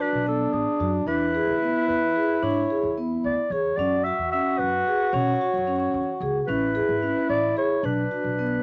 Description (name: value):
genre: contemporary instrumental, chamber music in an uneven meter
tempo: 222 BPM (eighths)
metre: 5/8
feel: straight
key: B dorian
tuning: A4 = 439 Hz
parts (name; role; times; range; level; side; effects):
- growling clarinet; melody; 0.0-8.6 s; G#4 to E5; -29 LUFS; equal; none
- clear French horn; second line; 0.0-8.6 s; D4 to F#4; -28 LUFS; equal; none
- vibraphone with soft mallets; arpeggios; 0.0-8.6 s; B3 to G#4; -30 LUFS; equal; none
- upright bass; bass; 0.1-8.6 s; G#1 to B2; -35 LUFS; equal; none
room: moderate booth ambience, RT60 0.2 s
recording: vinyl crackle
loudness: -24 LUFS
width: mono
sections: 0.0-8.6 A section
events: none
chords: 0.0 Bm7; 1.1 E7; 3.8 F#5; 6.5 Amaj7; 7.8 Bm